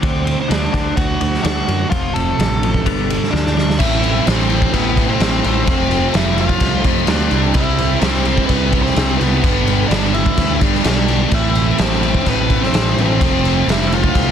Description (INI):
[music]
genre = quiet-loud alternative rock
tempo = 128 BPM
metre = 4/4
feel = straight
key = A minor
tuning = A4 = 445 Hz
[part]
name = biting lead guitar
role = melody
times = 0.0-14.3 s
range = B3 to A5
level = -21 LUFS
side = left 1 dB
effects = overdrive
[part]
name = twelve-string electric guitar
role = arpeggios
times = 0.0-3.8 s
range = D3 to F#4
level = -26 LUFS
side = left 12 dB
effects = phaser
[part]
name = thick fuzz guitar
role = riff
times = 0.0-14.3 s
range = F2 to F4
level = -22 LUFS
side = right 13 dB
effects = distortion
[part]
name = overdriven picked electric bass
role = bass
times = 0.0-14.3 s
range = F1 to G2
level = -20 LUFS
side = equal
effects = none
[part]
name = raw garage drum kit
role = drums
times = 0.0-14.3 s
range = crash cymbal, kick drum, ride cymbal, snare drum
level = -18 LUFS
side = equal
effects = none
[part]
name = heavy high-gain guitar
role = riff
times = 3.8-14.3 s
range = G2 to F4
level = -23 LUFS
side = left 15 dB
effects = distortion
[part]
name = tight distorted guitar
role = riff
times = 3.8-14.3 s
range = F2 to C4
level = -24 LUFS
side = left 1 dB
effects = distortion
[sound]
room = small room ambience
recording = dense, heavily limited modern master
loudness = -13 LUFS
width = side -8 dB against mid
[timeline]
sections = 0.0-3.8 A section; 3.8-14.3 B section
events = drum fill 3.3-3.8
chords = 0.0 D; 1.9 F; 2.9 Gadd9; 3.8 Amadd9; 5.7 F; 7.3 C; 9.4 G6; 11.3 Amadd9; 13.2 F